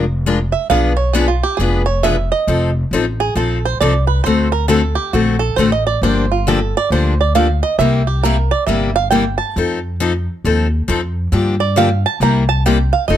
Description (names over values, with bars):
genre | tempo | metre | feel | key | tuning
acoustic string swing (jazz manouche) | 136 BPM | 4/4 | swing 63% on 8ths | F mixolydian | A4 = 439 Hz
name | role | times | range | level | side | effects
picked steel-string acoustic guitar | accompaniment | 0.0-13.2 s | B2 to B4 | -17 LUFS | left 5 dB | none
upright bass | bass | 0.0-13.2 s | F1 to G2 | -17 LUFS | equal | none
bluegrass banjo | second line | 0.5-13.2 s | F4 to Bb5 | -18 LUFS | right 7 dB | none
room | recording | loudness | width
light reverb | close, detailed microphones | -13 LUFS | side -11 dB against mid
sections
0.0-13.1 A section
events
five-string banjo solo 0.0-13.2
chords
0.0 Bb7; 0.7 Bdim7; 2.5 F7; 4.3 D7; 6.0 Gm7; 7.8 C7; 9.6 F7; 11.3 Gm7; 12.2 C7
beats
0.26 | 0.70 1.15 1.59 2.03 | 2.48 2.92 3.36 3.81 | 4.25 4.69 5.14 5.58 | 6.02 6.47 6.91 7.35 | 7.79 8.23 8.68 9.12 | 9.56 10.00 10.44 10.89 | 11.33 11.77 12.21 12.65 | 13.09